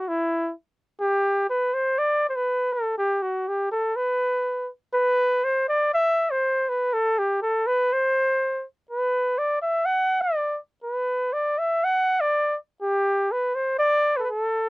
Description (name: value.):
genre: klezmer.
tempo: 122 BPM.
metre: 4/4.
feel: straight.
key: unclear.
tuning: A4 = 444 Hz.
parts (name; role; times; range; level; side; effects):
mellow cornet; solo; 0.0-14.7 s; E4 to F#5; -21 LUFS; equal; none.
room: light reverb.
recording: dry, close 1970s-style studio recording.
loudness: -21 LUFS.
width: side -24 dB against mid.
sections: 0.0-1.0 A section; 1.0-14.7 B section.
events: none.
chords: none.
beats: 0.01 0.51 | 1.00 1.49 1.99 2.48 | 2.97 3.46 3.96 4.45 | 4.94 5.43 5.92 6.41 | 6.91 7.40 7.89 8.38 | 8.87 9.36 9.85 10.35 | 10.84 11.33 11.82 12.32 | 12.81 13.30 13.80 14.29.